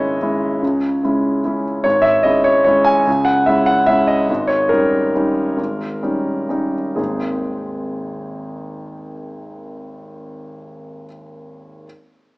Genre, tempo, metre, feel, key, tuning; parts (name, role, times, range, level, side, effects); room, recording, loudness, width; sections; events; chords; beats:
classical, piano waltz; 118-154 BPM; 3/4; rubato; A4 = 440 Hz
warm concert grand piano; solo; 0.0-11.9 s; G#1 to G#5; -16 LUFS; equal
moderate recital hall reverb, RT60 1.8 s; small speaker sound; -15 LUFS; side -25 dB against mid
0.0-7.0 A section; 7.0-9.7 B section
slowing down 3.7-7.0
0.0 C#m/G#; 4.3 D#7/G#; 7.0 G#
0.20 | 0.62 1.02 1.44 | 1.85 2.24 2.66 | 3.07 3.47 3.88 | 4.29 4.71 5.14 | 5.58 6.02 6.49 | 6.98 7.42 7.88 | 8.33 8.78 9.24